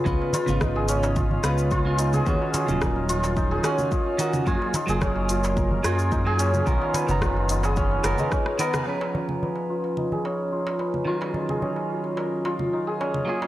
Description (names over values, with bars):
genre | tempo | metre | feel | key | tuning
organic downtempo | 109 BPM | 4/4 | straight | Db mixolydian | A4 = 441 Hz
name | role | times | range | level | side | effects
santur | arpeggios | 0.0-13.5 s | Ab3 to Cb5 | -25 LUFS | left 1 dB | low-pass filter, analog delay
clean electric guitar | accompaniment | 0.1-13.5 s | Db3 to Bb5 | -29 LUFS | right 2 dB | sidechain pumping, analog delay
smooth gliding synth bass | bass | 0.1-8.2 s | Eb1 to Gb2 | -26 LUFS | equal | none
afro-pop drum kit | drums | 0.1-13.2 s | cabasa, congas, hi-hat, rim click | -30 LUFS | right 1 dB | studio reverb
electronic kick drum | drums | 0.1-8.4 s | none | -27 LUFS | equal | overdrive, studio reverb
darbuka | percussion | 0.2-13.5 s | none | -34 LUFS | right 1 dB | none
quartz singing bowl | texture | 8.9-13.5 s | Bb5 | -42 LUFS | right 6 dB | none
room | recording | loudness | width
light reverb, digital ambience | dry, gritty hardware recording | -22 LUFS | side -14 dB against mid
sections
0.0-8.9 A section; 8.9-13.5 B section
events
drum fill 8.3-8.9; band accent 8.7; filter sweep on santur 8.9-13.5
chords
0.1 Db7; 2.3 Ebm7; 4.5 Gbadd9; 6.7 Cbmaj7; 8.9 Db7; 11.1 Ebm7